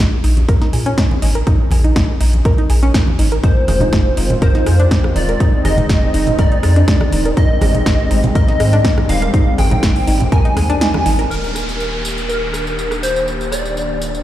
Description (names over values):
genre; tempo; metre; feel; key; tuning
progressive house; 122 BPM; 4/4; straight; Eb major; A4 = 441 Hz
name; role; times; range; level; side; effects
analog pluck; arpeggios; 0.0-11.2 s; Db4 to Bb4; -22 LUFS; right 1 dB; chorus, sidechain pumping, dub echo
round analog bass; bass; 0.0-14.2 s; Eb1 to Bb2; -16 LUFS; equal; sidechain pumping
deep house drum kit; drums; 0.2-14.2 s; hi-hat, rim click, snare drum, tambourine; -23 LUFS; equal; overdrive
congas; percussion; 0.4-11.0 s; none; -22 LUFS; right 1 dB; sidechain pumping on perc
electronic kick drum; drums; 0.5-10.4 s; none; -14 LUFS; equal; none
plucky unison lead; melody; 3.4-14.2 s; Bb4 to Ab5; -20 LUFS; equal; ensemble chorus, sidechain pumping, dub echo
warm analog pad; sustained chords; 3.4-14.2 s; Eb3 to G4; -23 LUFS; equal; chorus, sidechain pumping
downlifter; sound effects; 11.3-14.2 s; none; -25 LUFS; equal; none
room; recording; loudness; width
light reverb; played on a big sound system in a bare room, large studio reverb; -12 LUFS; side -13 dB against mid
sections
0.0-11.3 A section; 11.3-14.2 B section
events
filter sweep on synth pluck 0.0-11.3; kick drops out 10.8-11.3; band accent 10.8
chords
0.0 Bb7(no3); 3.4 Fm7; 7.4 Abmaj7; 11.3 Ebmaj7